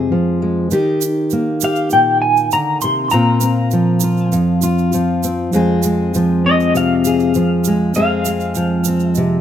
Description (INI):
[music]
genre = acoustic folk duo or small band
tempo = 100 BPM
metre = 4/4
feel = straight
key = F minor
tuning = A4 = 440 Hz
[part]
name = fingerpicked steel-string acoustic guitar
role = accompaniment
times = 0.0-9.4 s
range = F2 to Ab4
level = -14 LUFS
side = equal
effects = none
[part]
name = egg shaker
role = percussion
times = 0.7-9.3 s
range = none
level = -26 LUFS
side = right 12 dB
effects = none
[part]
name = electric guitar through a small old amp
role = melody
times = 1.6-9.4 s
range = Eb5 to C6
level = -17 LUFS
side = left 1 dB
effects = tremolo, tape echo
[sound]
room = light reverb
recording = close, detailed microphones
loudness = -13 LUFS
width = side -10 dB against mid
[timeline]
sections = 0.0-9.4 A section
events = none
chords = 0.0 Fm; 0.7 Eb; 3.1 Bbsus2; 5.5 Fm